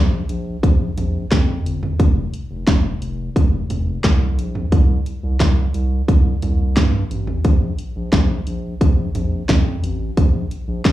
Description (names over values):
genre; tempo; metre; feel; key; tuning
piano-driven pop; 88 BPM; 4/4; straight; unclear; A4 = 440 Hz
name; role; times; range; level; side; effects
round analog bass; bass; 0.0-10.9 s; F1 to G2; -20 LUFS; equal; none
house drum kit; drums; 0.3-10.9 s; handclaps, hi-hat, kick drum, snare drum, toms; -16 LUFS; equal; none
room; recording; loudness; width
little or no reverb; live gig heard through the venue's PA, club reverb, studio reverb; -16 LUFS; side -14 dB against mid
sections
0.0-10.9 A section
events
none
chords
none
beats
0.63 1.31 | 1.99 2.67 3.36 4.04 | 4.72 5.40 6.08 6.76 | 7.45 8.13 8.81 9.49 | 10.17 10.85